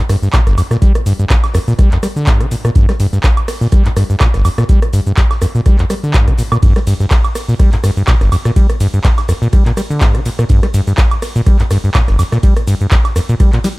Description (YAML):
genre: acid house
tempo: 124 BPM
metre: 4/4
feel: swing 55% on 16ths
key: G minor pentatonic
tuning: A4 = 442 Hz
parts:
  - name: acid bass, saw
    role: riff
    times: 0.0-13.7 s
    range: G1 to G3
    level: -14 LUFS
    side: equal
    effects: tube saturation, sidechain pumping
  - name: booming analog drum machine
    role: drums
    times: 0.1-13.8 s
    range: handclaps, hi-hat, ride cymbal, rim click, shaker, snare drum, woodblock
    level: -21 LUFS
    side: right 2 dB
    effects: none
  - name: warm soul drum kit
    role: drums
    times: 0.1-13.8 s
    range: hi-hat, snare drum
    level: -33 LUFS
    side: right 1 dB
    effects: none
  - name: electronic kick drum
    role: drums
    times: 0.3-13.5 s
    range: none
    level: -11 LUFS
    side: equal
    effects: overdrive
room: little or no reverb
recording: none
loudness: -10 LUFS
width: side -22 dB against mid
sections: 0.0-13.8 A section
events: none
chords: none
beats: 0.34 | 0.82 1.30 1.79 2.27 | 2.76 3.24 3.72 4.21 | 4.69 5.17 5.66 6.14 | 6.63 7.11 7.59 8.08 | 8.56 9.05 9.53 10.01 | 10.50 10.98 11.46 11.95 | 12.43 12.92 13.40